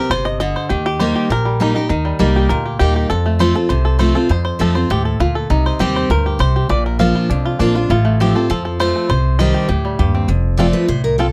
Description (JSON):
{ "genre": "bluegrass", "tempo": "200 BPM", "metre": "4/4", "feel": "straight", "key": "unclear", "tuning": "A4 = 438 Hz", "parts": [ { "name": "bluegrass banjo", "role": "melody", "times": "0.0-11.3 s", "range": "G3 to F5", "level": "-22 LUFS", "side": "equal", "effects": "none" }, { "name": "picked steel-string acoustic guitar", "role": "accompaniment", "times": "0.0-11.3 s", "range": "F2 to G4", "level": "-20 LUFS", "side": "equal", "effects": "none" }, { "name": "upright bass", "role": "bass", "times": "0.1-11.3 s", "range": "F1 to F2", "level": "-20 LUFS", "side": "equal", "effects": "none" }, { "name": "picked steel-string acoustic guitar", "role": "melody", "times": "10.6-11.3 s", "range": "A4 to D5", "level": "-22 LUFS", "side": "equal", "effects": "none" } ], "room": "light reverb", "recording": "close, detailed microphones", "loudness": "-16 LUFS", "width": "mono", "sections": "0.7-10.3 A section; 10.3-11.3 A section", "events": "five-string banjo solo 0.0-10.3; steel-string acoustic guitar solo 10.3-11.3", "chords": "0.0 Cm; 0.7 Eb; 3.1 F; 5.5 Cm; 6.7 Bb; 7.9 F/A; 9.1 Cm; 10.3 F" }